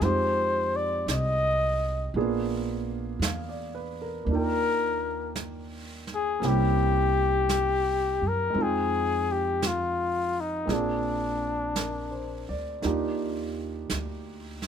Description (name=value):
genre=jazz ballad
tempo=56 BPM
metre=4/4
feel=swing 68% on 8ths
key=Eb major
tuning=A4 = 440 Hz
part: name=trumpet with bucket mute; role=melody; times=0.0-12.5 s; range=D4 to Eb5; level=-26 LUFS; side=left 3 dB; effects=none
part: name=warm grand piano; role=accompaniment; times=0.0-14.7 s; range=Ab3 to G5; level=-32 LUFS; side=right 4 dB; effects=none
part: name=upright bass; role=bass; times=0.0-14.7 s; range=Bb1 to Gb2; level=-31 LUFS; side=equal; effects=none
part: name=jazz brush drum kit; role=drums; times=0.0-14.7 s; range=brushed snare drum, hi-hat, snare drum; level=-35 LUFS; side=right 4 dB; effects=none
room=little or no reverb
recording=minimal, uncompressed stereo recording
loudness=-25 LUFS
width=side -8 dB against mid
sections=0.0-12.8 A section; 12.8-14.7 B section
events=none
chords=0.0 Fm7; 2.2 Bb7b9; 4.3 Ebmaj9; 6.4 C7b9; 8.6 Fm7; 10.7 Bb7; 12.8 Ebmaj9